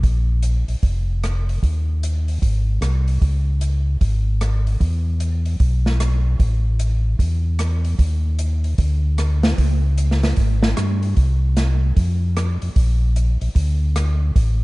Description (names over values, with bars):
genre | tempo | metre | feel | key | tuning
soul jazz organ trio | 151 BPM | 4/4 | swing 64% on 8ths | unclear | A4 = 440 Hz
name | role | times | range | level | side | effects
mellow tonewheel organ | bass | 0.0-14.6 s | F1 to G2 | -18 LUFS | equal | chorus vibrato, slow rotary speaker
swinging big-band drum kit | drums | 0.0-14.5 s | hi-hat, kick drum, rim click, snare drum | -22 LUFS | right 1 dB | none
room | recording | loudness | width
little or no reverb | dark, warm production, nothing above 10.7 kHz | -17 LUFS | side -22 dB against mid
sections
0.0-6.4 A section; 6.4-14.6 B section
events
none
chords
none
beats
| 0.04 0.43 0.83 1.23 | 1.62 2.02 2.42 2.82 | 3.22 3.61 4.01 4.41 | 4.81 5.21 5.60 6.00 | 6.40 6.80 7.20 7.59 | 7.99 8.39 8.79 9.19 | 9.58 9.98 10.38 10.78 | 11.18 11.57 11.97 12.37 | 12.77 13.17 13.56 13.96 | 14.36